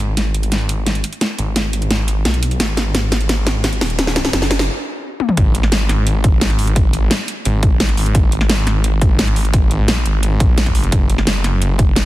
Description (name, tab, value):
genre	dark technical drum and bass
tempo	173 BPM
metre	4/4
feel	straight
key	G# minor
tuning	A4 = 440 Hz
part	snarling distorted saw bass	bass	0.0-12.1 s	D#1 to B1	-17 LUFS	equal	distortion, overdrive
part	dubstep drum kit	drums	0.0-12.0 s	hi-hat, snare drum, toms	-18 LUFS	equal	small room ambience
part	electronic kick drum	drums	5.4-11.9 s	none	-14 LUFS	equal	small room ambience
room	little or no reverb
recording	dense, heavily limited modern master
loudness	-14 LUFS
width	side -16 dB against mid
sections	0.0-5.4 A section; 5.4-12.1 B section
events	build-up 0.0-5.4; drum fill 0.0-4.7, 5.2; stop 4.7-5.4; drop 5.4-12.1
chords	none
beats	0.17 0.52 0.86 | 1.21 1.56 1.91 2.25 | 2.60 2.95 3.29 3.64 | 3.99 4.33 4.68 5.03 | 5.37 5.72 6.07 6.41 | 6.76 7.11 7.46 7.80 | 8.15 8.49 8.84 9.19 | 9.54 9.88 10.23 10.58 | 10.92 11.27 11.62 11.96